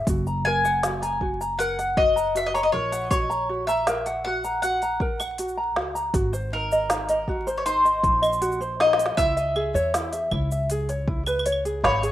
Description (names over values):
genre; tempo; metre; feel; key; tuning
folktronica; 79 BPM; 4/4; straight; F# mixolydian; A4 = 441 Hz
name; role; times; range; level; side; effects
ukulele; arpeggios; 0.0-12.1 s; D#4 to B5; -26 LUFS; equal; none
upright bass; bass; 0.1-12.1 s; F#1 to E2; -31 LUFS; equal; none
electronic kick drum; drums; 0.1-12.0 s; none; -27 LUFS; equal; overdrive
organic electronic drum kit; drums; 0.1-12.1 s; claves, hi-hat, shaker, snare drum; -28 LUFS; equal; overdrive
mandolin; melody; 0.5-12.1 s; A#4 to G#5; -23 LUFS; left 1 dB; digital delay
room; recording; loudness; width
moderate studio reverb, RT60 0.5 s; rough home demo mix, vinyl crackle; -21 LUFS; side -13 dB against mid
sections
0.0-12.1 A section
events
none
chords
0.1 F#; 6.1 G#7; 9.2 C#m7